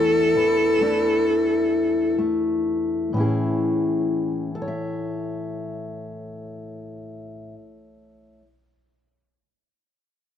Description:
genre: folk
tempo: 62-70 BPM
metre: 4/4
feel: straight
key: A major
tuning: A4 = 440 Hz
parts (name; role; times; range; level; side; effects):
- clear cello; melody; 0.0-2.1 s; A4; -21 LUFS; equal; none
- fingerpicked steel-string acoustic guitar; accompaniment; 0.0-8.5 s; E2 to E5; -23 LUFS; left 2 dB; none
room: light reverb, studio ambience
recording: dry, close 1970s-style studio recording, faint mains hum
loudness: -20 LUFS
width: side -9 dB against mid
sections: 0.0-3.1 A section; 3.1-6.9 B section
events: slowing down 0.0-3.1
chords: 0.0 E7sus4; 3.1 Amaj7

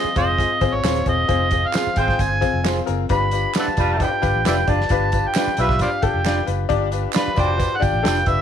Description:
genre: uptempo 1960s-style soul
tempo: 133 BPM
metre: 4/4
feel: straight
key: unclear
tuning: A4 = 441 Hz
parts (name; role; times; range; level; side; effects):
- overdriven harmonica; melody; 0.0-8.4 s; B4 to B5; -22 LUFS; right 2 dB; none
- bright upright piano; accompaniment; 0.0-8.4 s; C4 to Eb5; -24 LUFS; left 12 dB; none
- electric guitar through a small old amp; stabs; 0.0-8.2 s; D4 to C5; -30 LUFS; right 14 dB; tape echo
- vintage muted fingered electric bass; bass; 0.0-8.4 s; Eb1 to B1; -23 LUFS; right 1 dB; none
- mellow horn section; second line; 0.2-7.7 s; B2 to D5; -26 LUFS; right 2 dB; none
- warm soul drum kit; drums; 0.2-8.4 s; hi-hat, kick drum, snare drum; -24 LUFS; right 1 dB; none
- tambourine and handclaps; percussion; 0.2-8.4 s; none; -33 LUFS; right 16 dB; none
room: light reverb, small room ambience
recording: 1960s-style stereo with parts hard left and right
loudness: -17 LUFS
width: side -9 dB against mid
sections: 0.0-8.4 A section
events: none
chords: 0.0 Fm; 3.1 G7

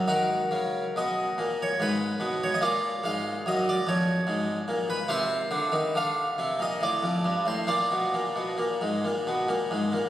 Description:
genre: classical, baroque-style suite movement for harpsichord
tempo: 71 BPM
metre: 3/4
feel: uneven beats, rubato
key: unclear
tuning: A4 = 441 Hz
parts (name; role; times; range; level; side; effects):
- harpsichord; solo; 0.0-10.1 s; F2 to F5; -24 LUFS; equal; none
room: wet cathedral reverb, RT60 5.3 s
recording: recorded on a phone in the room, studio reverb, compression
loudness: -25 LUFS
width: side -13 dB against mid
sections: 0.0-10.1 A section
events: none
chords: 0.1 Ebm; 1.8 Abm; 2.6 Bb5; 4.3 Abmadd11; 5.1 F7/C; 7.7 Bb

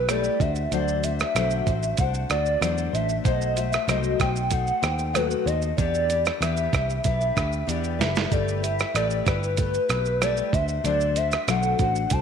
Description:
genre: indie pop, bedroom pop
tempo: 95 BPM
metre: 4/4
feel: straight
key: unclear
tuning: A4 = 439 Hz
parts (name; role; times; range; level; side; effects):
- hollow clarinet-like synth lead; melody; 0.0-12.2 s; B4 to A5; -26 LUFS; equal; analog chorus, slapback echo
- picked steel-string acoustic guitar; accompaniment; 0.0-12.2 s; B2 to C5; -29 LUFS; left 12 dB; lush chorus, warbly pitch drift
- vintage muted picked electric bass; bass; 0.0-12.2 s; F#1 to E2; -27 LUFS; right 1 dB; none
- dusty soul sampler-style drum kit; drums; 0.1-12.2 s; hi-hat, kick drum, rim click, shaker, snare drum; -27 LUFS; right 4 dB; none
room: light reverb, digital ambience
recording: 1960s-style stereo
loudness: -21 LUFS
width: side -7 dB against mid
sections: 0.0-12.2 A section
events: drum fill 7.7-8.3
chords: 0.4 D7; 3.2 B7b9; 5.8 Em7; 8.3 G69; 10.5 D7

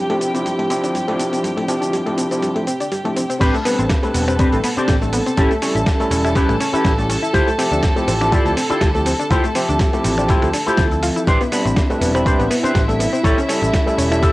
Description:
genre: nu-disco, nu disco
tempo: 122 BPM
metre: 4/4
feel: swing 54% on 16ths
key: A minor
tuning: A4 = 439 Hz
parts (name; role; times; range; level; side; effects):
- overdriven tine electric piano; accompaniment; 0.0-14.3 s; F3 to B5; -22 LUFS; equal; medium tremolo, sidechain pumping, cassette tape
- warm chamber string section; sustained chords; 0.0-14.3 s; E4 to A5; -24 LUFS; equal; sidechain pumping, cassette tape
- analog pluck; arpeggios; 0.1-14.3 s; G3 to F4; -23 LUFS; left 1 dB; chorus, sidechain pumping, cassette tape, analog delay
- dusty soul sampler-style drum kit; drums; 0.1-14.3 s; crash cymbal, finger snaps, hi-hat, shaker, snare drum; -26 LUFS; equal; cassette tape
- electric guitar with an envelope filter; riff; 3.4-14.3 s; C4 to E5; -21 LUFS; equal; lush chorus, cassette tape, analog delay
- picked electric bass with an envelope filter; bass; 3.4-14.3 s; E1 to D2; -22 LUFS; equal; none
- electronic kick drum; drums; 3.4-14.3 s; none; -18 LUFS; equal; cassette tape
room: light reverb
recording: home recording on cassette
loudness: -15 LUFS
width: side -18 dB against mid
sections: 0.0-3.4 A section; 3.4-14.3 B section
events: filter sweep on synth arpeggio sound 0.0-3.4; drop 3.4-14.3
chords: 0.0 Dm11; 3.4 Am11; 5.4 A7; 7.3 Dm11; 11.3 Am11; 13.2 A7

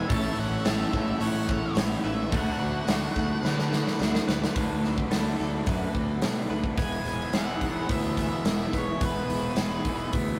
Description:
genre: rock, shoegaze and dream pop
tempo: 108 BPM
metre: 4/4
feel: straight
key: E mixolydian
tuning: A4 = 440 Hz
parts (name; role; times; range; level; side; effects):
- octave-fuzz lead guitar; melody; 0.0-10.1 s; B4 to A5; -39 LUFS; equal; distortion
- phased analog pad; sustained chords; 0.0-10.4 s; G#4 to E6; -42 LUFS; equal; none
- direct-recorded clean electric guitar; arpeggios; 0.0-10.4 s; F#4 to C#5; -41 LUFS; equal; none
- biting overdriven guitar; riff; 0.0-10.4 s; E2 to A4; -39 LUFS; equal; none
- raw garage guitar; riff; 0.0-10.4 s; A2 to F#4; -38 LUFS; equal; overdrive
- thick fuzz guitar; riff; 0.0-10.4 s; E2 to D4; -38 LUFS; equal; none
- fuzz fingered electric bass; bass; 0.1-10.4 s; E1 to D3; -33 LUFS; equal; overdrive
- huge arena drum kit; drums; 0.1-10.3 s; hi-hat, kick drum, snare drum; -31 LUFS; equal; none
- tambourine; percussion; 0.1-10.3 s; none; -53 LUFS; equal; none
room: wet small room reverb, RT60 0.5 s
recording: rough rehearsal-room recording, warm saturation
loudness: -27 LUFS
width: mono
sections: 0.0-4.6 A section; 4.6-6.8 B section; 6.8-10.4 C section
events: drum fill 3.4-4.6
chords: 0.1 A6; 2.3 D6; 6.8 E

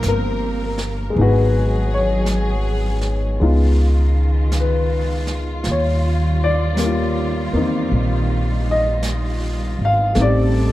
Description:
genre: jazz ballad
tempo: 53 BPM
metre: 4/4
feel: swing 66% on 8ths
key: unclear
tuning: A4 = 441 Hz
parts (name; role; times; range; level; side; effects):
- warm grand piano; accompaniment; 0.0-10.7 s; G3 to F5; -21 LUFS; left 2 dB; none
- warm symphonic string section; sustained chords; 0.0-10.7 s; Eb3 to Bb4; -26 LUFS; right 2 dB; none
- upright bass; bass; 0.0-10.7 s; G1 to E2; -18 LUFS; equal; none
- jazz brush drum kit; drums; 0.0-10.7 s; brushed snare drum, hi-hat, snare drum; -33 LUFS; right 2 dB; none
room: little or no reverb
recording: dark, warm production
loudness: -16 LUFS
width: side -15 dB against mid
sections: 0.0-10.7 A section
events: none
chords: 0.0 Gm11; 1.2 Abm7; 3.4 Db9; 5.7 Ebadd9; 10.2 Am7b5

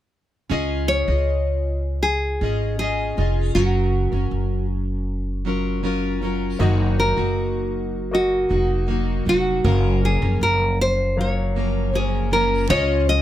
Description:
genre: acoustic pop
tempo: 79 BPM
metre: 4/4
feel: straight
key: Db major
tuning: A4 = 440 Hz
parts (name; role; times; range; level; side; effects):
- fingerpicked plugged-in steel-string acoustic guitar; accompaniment; 0.5-13.2 s; Gb2 to Eb5; -25 LUFS; equal; double-tracked left and right
- upright bass; bass; 0.5-13.2 s; F1 to Db2; -22 LUFS; equal; none
- nylon-string guitar; melody; 0.9-13.2 s; Gb4 to Eb5; -22 LUFS; equal; none
- warm grand piano; accompaniment; 6.6-13.2 s; Gb3 to F5; -31 LUFS; left 4 dB; none
room: light reverb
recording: none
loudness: -19 LUFS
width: side -12 dB against mid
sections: 0.5-12.7 A section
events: none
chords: 0.5 Dbadd9; 3.5 Gbmaj7; 6.6 Ebm/Gb; 9.6 Gbmaj7; 12.7 Dbadd9

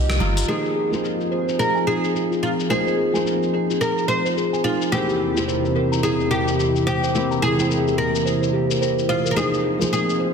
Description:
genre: organic downtempo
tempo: 108 BPM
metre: 4/4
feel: swing 58% on 16ths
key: unclear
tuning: A4 = 437 Hz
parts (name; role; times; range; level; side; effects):
- oud; melody; 0.0-10.3 s; F4 to C5; -23 LUFS; left 1 dB; tape echo
- airy breathy pad; sustained chords; 0.0-10.3 s; E2 to Ab4; -24 LUFS; left 1 dB; chorus
- steel tongue drum; arpeggios; 0.0-10.3 s; Eb4 to Bb5; -24 LUFS; right 2 dB; low-pass filter, digital delay
- dusty soul sampler-style drum kit; drums; 0.1-10.2 s; hi-hat, rim click, shaker; -31 LUFS; left 5 dB; low-pass filter on hats, low-pass filter on perc, soft clipping on snare, low-pass filter on snare, low-pass filter on room
- congas; percussion; 0.2-0.3, 9.8-9.9 s; none; -32 LUFS; right 5 dB; none
- felt-muted upright piano; accompaniment; 0.5-10.3 s; E3 to G5; -28 LUFS; equal; digital delay
room: moderate lush hall reverb, RT60 2.3 s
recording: dense, heavily limited modern master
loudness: -18 LUFS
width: side -6 dB against mid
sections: 0.5-10.3 A section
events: band accent 0.1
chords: 0.5 Fm7; 4.9 C7/E; 9.4 Fm7

